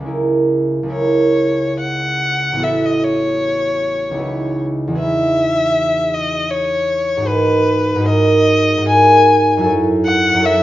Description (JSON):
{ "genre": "classical, impressionist duo for violin and harp", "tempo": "66-79 BPM", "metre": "3/4", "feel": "rubato", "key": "C# dorian", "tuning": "A4 = 440 Hz", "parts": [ { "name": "concert harp", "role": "accompaniment", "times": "0.0-10.6 s", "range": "A1 to C#5", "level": "-16 LUFS", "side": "right 2 dB", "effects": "none" }, { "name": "rich violin", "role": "melody", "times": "0.9-10.6 s", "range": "B4 to G#5", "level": "-16 LUFS", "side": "left 2 dB", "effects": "none" } ], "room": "moderate recital hall reverb, RT60 1.4 s", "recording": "nothing above 7.5 kHz", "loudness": "-13 LUFS", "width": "side -14 dB against mid", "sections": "0.1-10.6 A section", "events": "none", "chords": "0.1 C#m6; 2.6 A69; 4.2 C#m11; 5.0 Emaj9; 7.3 G#m9; 9.7 F#m7", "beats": "| 0.10 0.92 1.80 | 2.63 3.43 4.21 | 4.98 5.75 6.51 | 7.27 8.06 8.89 | 9.68 10.45" }